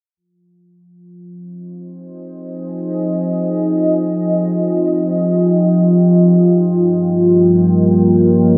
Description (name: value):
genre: ambient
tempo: free time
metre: none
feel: none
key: F minor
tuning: A4 = 443 Hz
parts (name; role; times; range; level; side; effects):
- deep dark ambient pad; sustained chords; 2.5-8.6 s; G3 to Ab5; -15 LUFS; equal; chorus, built-in reverb
room: moderate huge ambient reverb, RT60 6.5 s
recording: dark, warm production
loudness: -14 LUFS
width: mono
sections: 0.2-8.6 A section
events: filter sweep on ambient pad 0.2-8.6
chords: 0.2 Fm7; 6.3 Gm7b5